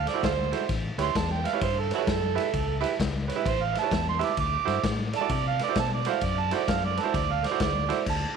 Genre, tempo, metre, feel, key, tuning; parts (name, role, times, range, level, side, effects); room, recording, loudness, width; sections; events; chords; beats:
electric blues shuffle; 130 BPM; 4/4; swing 64% on 8ths; D mixolydian; A4 = 439 Hz
overdriven harmonica; second line; 0.0-8.1 s; E4 to D6; -29 LUFS; right 11 dB
fingered electric bass; bass; 0.0-8.2 s; A1 to C3; -31 LUFS; left 3 dB
clear baby grand piano; accompaniment; 0.1-8.4 s; E4 to A5; -31 LUFS; right 10 dB
raw garage drum kit; drums; 0.1-8.2 s; crash cymbal, kick drum, ride cymbal, snare drum; -30 LUFS; left 3 dB
light reverb, studio reverb; 1960s-style stereo; -24 LUFS; side -6 dB against mid
0.0-8.1 A section
harmonica solo 0.0-8.1
0.0 D7; 0.7 A7; 4.4 D7
0.23 | 0.69 1.15 1.61 2.07 | 2.54 3.00 3.46 3.92 | 4.38 4.84 5.30 5.76 | 6.22 6.68 7.15 7.61 | 8.07